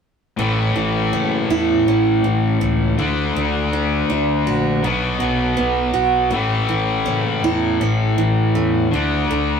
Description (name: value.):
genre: rock.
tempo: 81 BPM.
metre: 4/4.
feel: straight.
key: A major.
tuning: A4 = 440 Hz.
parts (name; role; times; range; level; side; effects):
picked steel-string acoustic guitar; arpeggios; 0.4-9.6 s; A2 to F#4; -21 LUFS; right 6 dB; none.
distorted electric guitar; riff; 0.4-9.6 s; A2 to D4; -19 LUFS; left 4 dB; distortion.
fuzz fingered electric bass; bass; 0.4-9.6 s; F#1 to E2; -23 LUFS; equal; overdrive.
room: moderate studio reverb, RT60 0.6 s.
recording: rough rehearsal-room recording.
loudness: -16 LUFS.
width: side -6 dB against mid.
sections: 0.4-9.6 A section.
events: none.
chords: 0.4 A; 3.0 D; 4.8 B5; 6.3 A; 8.9 D5.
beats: | 0.39 1.13 1.87 2.61 | 3.35 4.09 4.84 5.58 | 6.32 7.07 7.81 8.55 | 9.30.